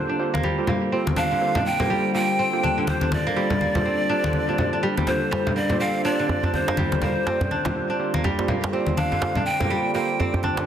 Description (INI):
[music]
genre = afro house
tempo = 123 BPM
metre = 4/4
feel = swing 60% on 16ths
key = G minor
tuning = A4 = 440 Hz
[part]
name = breathy bright large pan pipes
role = melody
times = 0.0-10.4 s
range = C5 to G5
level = -26 LUFS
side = equal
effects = digital delay
[part]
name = warm analog pad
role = sustained chords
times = 0.0-10.7 s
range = G3 to D5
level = -31 LUFS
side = left 1 dB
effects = chorus
[part]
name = kora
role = arpeggios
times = 0.0-10.7 s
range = D3 to D4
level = -27 LUFS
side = equal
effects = low-pass filter, digital delay
[part]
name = warm analog keys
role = stabs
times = 0.0-10.7 s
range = Bb3 to C5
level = -29 LUFS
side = right 3 dB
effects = chorus, digital delay
[part]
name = congas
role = percussion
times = 0.3-10.6 s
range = none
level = -26 LUFS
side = left 1 dB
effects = none
[part]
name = djembe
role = percussion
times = 5.3-10.7 s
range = none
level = -28 LUFS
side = right 1 dB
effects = none
[sound]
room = moderate plate reverb, RT60 1.9 s, small room ambience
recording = dense, heavily limited modern master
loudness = -20 LUFS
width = side -9 dB against mid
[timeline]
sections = 0.0-10.7 A section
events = filter sweep on analog synth pad 0.0-10.7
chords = 0.0 Gm11